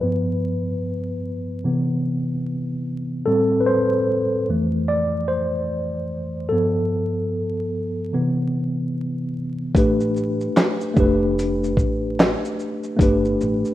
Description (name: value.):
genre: lo-fi hip hop.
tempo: 74 BPM.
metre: 4/4.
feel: swing 58% on 16ths.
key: A minor.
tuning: A4 = 441 Hz.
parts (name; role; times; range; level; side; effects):
tine electric piano; accompaniment; 0.0-13.7 s; F2 to D5; -20 LUFS; equal; overdrive, fast stereo tremolo, low-pass filter.
dusty soul sampler-style drum kit; drums; 9.7-13.7 s; handclaps, hi-hat, kick drum, shaker, snare drum; -18 LUFS; equal; vintage 12-bit sampler grit.
upright bass; bass; 9.8-13.6 s; F1 to A1; -26 LUFS; equal; none.
room: light reverb, digital ambience.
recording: rough home demo mix, vinyl crackle.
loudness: -19 LUFS.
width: side -14 dB against mid.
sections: 0.0-9.7 A section; 9.7-13.7 B section.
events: tine electric piano solo 0.0-9.7; filter sweep on tine electric piano 0.0-9.7.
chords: 0.0 G7; 1.6 Cmaj7; 3.3 Am7; 4.5 Fmaj7; 6.5 G9; 8.1 Cmaj7; 9.7 A9sus4; 11.0 Fadd9; 13.0 Gadd9.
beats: | 0.02 0.83 1.64 2.45 | 3.26 4.07 4.88 5.69 | 6.50 7.32 8.13 8.94 | 9.75 10.56 11.37 12.18 | 12.99.